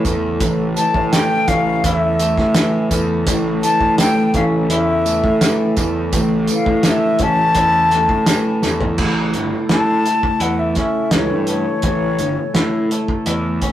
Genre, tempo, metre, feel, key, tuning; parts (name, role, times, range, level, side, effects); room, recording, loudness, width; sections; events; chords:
psychedelic rock; 84 BPM; 4/4; straight; A major; A4 = 440 Hz
mellow tonewheel organ; sustained chords; 0.0-13.7 s; C#3 to A4; -26 LUFS; right 3 dB; slow rotary speaker
twangy electric guitar; riff; 0.0-13.7 s; A2 to E4; -21 LUFS; left 2 dB; harmonic tremolo
fuzz picked electric bass; bass; 0.0-13.6 s; G1 to A2; -20 LUFS; right 1 dB; overdrive
tambourine; percussion; 0.0-8.8 s; -31 LUFS; right 8 dB
cloth-damped thuddy drum kit; drums; 0.1-13.7 s; crash cymbal, hi-hat, kick drum, snare drum, toms; -20 LUFS; equal
breathy concert flute; melody; 0.8-12.9 s; C#5 to A5; -18 LUFS; left 2 dB
moderate studio reverb, RT60 0.7 s; rough rehearsal-room recording, warm saturation; -14 LUFS; side -12 dB against mid
0.0-9.0 A section; 9.0-13.7 B section
drum fill 8.6-9.0; flute solo 9.0-13.7
0.0 A